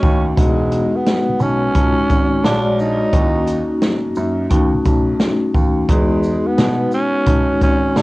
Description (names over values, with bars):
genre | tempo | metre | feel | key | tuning
hip hop, jazz-hop | 87 BPM | 4/4 | swing 65% on 16ths | unclear | A4 = 442 Hz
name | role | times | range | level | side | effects
growling tenor saxophone | melody | 0.0-8.0 s | G#3 to D#4 | -20 LUFS | right 1 dB | cassette tape, tape echo
vibraphone with medium mallets | accompaniment | 0.0-8.0 s | G#3 to D#5 | -18 LUFS | left 2 dB | cassette tape
dark baby grand piano | bass | 0.0-8.0 s | E1 to B2 | -21 LUFS | right 1 dB | none
open jazz drum kit | drums | 0.0-8.0 s | hi-hat, kick drum, shaker, snare drum | -18 LUFS | equal | vintage 12-bit sampler grit, cassette tape
room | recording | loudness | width
light reverb | home recording on cassette | -14 LUFS | side -20 dB against mid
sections
0.4-8.0 A section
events
none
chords
0.4 Emaj9; 1.8 B69; 2.4 A#7alt; 3.1 D#m7; 4.5 B9; 5.9 Emaj9; 7.3 B69